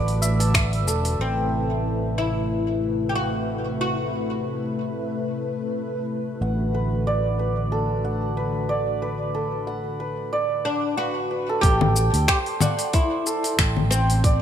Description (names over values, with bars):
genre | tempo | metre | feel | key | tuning
organic downtempo | 92 BPM | 4/4 | swing 56% on 16ths | A dorian | A4 = 440 Hz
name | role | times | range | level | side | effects
oud | melody | 0.0-6.1, 10.7-14.4 s | C4 to G4 | -26 LUFS | left 1 dB | digital delay
warm analog pad | sustained chords | 0.0-11.6 s | C3 to B4 | -28 LUFS | left 1 dB | wide subtle chorus, sidechain pumping
santur | arpeggios | 0.0-14.4 s | A4 to A5 | -27 LUFS | right 2 dB | digital delay
sustaining fretless electric bass | bass | 0.0-14.4 s | E1 to D2 | -26 LUFS | equal | tube saturation, sidechain pumping
deep house drum kit | drums | 0.1-1.2, 11.6-14.4 s | congas, finger snaps, hi-hat, shaker | -24 LUFS | left 3 dB | overdrive, studio reverb
electronic kick drum | drums | 0.5-0.7, 11.6-14.4 s | none | -21 LUFS | equal | studio reverb
room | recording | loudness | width
moderate plate reverb, RT60 3.0 s | bright 1980s-style digital production | -21 LUFS | side -9 dB against mid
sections
0.0-1.2 A section; 1.2-11.6 B section; 11.6-14.4 C section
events
none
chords
0.0 Bm7/A; 1.2 Amadd9; 6.4 Bm7/A; 11.6 Am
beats
0.55 | 1.20 1.85 2.50 3.15 | 3.81 4.46 5.11 5.76 | 6.42 7.07 7.72 8.37 | 9.02 9.68 10.33 10.98 | 11.63 12.29 12.94 13.59 | 14.24